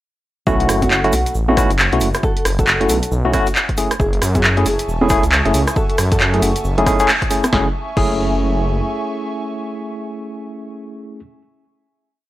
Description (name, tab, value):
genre	UK garage, two-step garage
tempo	136 BPM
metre	4/4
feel	swing 61% on 16ths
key	F# minor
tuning	A4 = 440 Hz
part	nylon-string guitar	melody	0.5-11.2 s	F#3 to A4	-25 LUFS	equal	analog delay
part	tine electric piano	stabs	0.5-11.2 s	A3 to G#4	-19 LUFS	equal	fast stereo tremolo, analog delay
part	dark detuned saw bass	bass	0.5-8.8 s	E1 to F#2	-19 LUFS	equal	transformer saturation
part	electronic kick drum	drums	0.5-8.1 s	none	-21 LUFS	equal	none
part	cabasa	percussion	0.5-7.5 s	none	-32 LUFS	right 2 dB	none
part	punchy analog drum machine	drums	0.6-8.1 s	congas, crash cymbal, handclaps, hi-hat, rim click, snare drum	-18 LUFS	equal	none
part	airy breathy pad	sustained chords	4.5-10.8 s	E5 to C#6	-29 LUFS	right 2 dB	chorus, sidechain pumping
room	little or no reverb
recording	dry, gritty hardware recording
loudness	-14 LUFS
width	side -15 dB against mid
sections	0.5-7.5 drop; 7.5-11.1 final chord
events	drop 0.5-7.5; band accent 7.1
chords	0.5 B9sus4; 3.8 F#m9